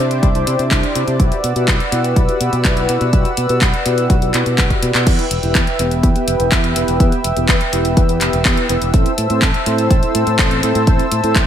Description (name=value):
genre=italo disco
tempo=124 BPM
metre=4/4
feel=straight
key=E minor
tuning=A4 = 440 Hz
part: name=warm analog pad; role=sustained chords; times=0.0-11.5 s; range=B4 to E6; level=-20 LUFS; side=equal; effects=chorus
part: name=mellow synth brass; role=stabs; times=0.0-11.4 s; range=B3 to C5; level=-21 LUFS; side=equal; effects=chorus, tape echo
part: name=fingered electric bass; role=bass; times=0.0-11.5 s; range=E1 to C3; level=-19 LUFS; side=equal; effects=none
part: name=house drum kit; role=drums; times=0.1-11.5 s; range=crash cymbal, handclaps, hi-hat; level=-20 LUFS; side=left 1 dB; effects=gated reverb
part: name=electronic kick drum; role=drums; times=0.2-11.5 s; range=none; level=-15 LUFS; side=equal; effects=none
room=light reverb, digital ambience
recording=none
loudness=-13 LUFS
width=side -9 dB against mid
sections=0.0-5.1 A section; 5.1-11.5 B section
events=drum fill 4.6-5.1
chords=0.0 Cadd9; 1.2 Emadd9/B; 5.1 Em; 8.9 Am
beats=0.23 0.71 | 1.20 1.68 2.16 2.65 | 3.13 3.62 4.10 4.58 | 5.07 5.55 6.03 6.52 | 7.00 7.49 7.97 8.45 | 8.94 9.42 9.90 10.39 | 10.87 11.36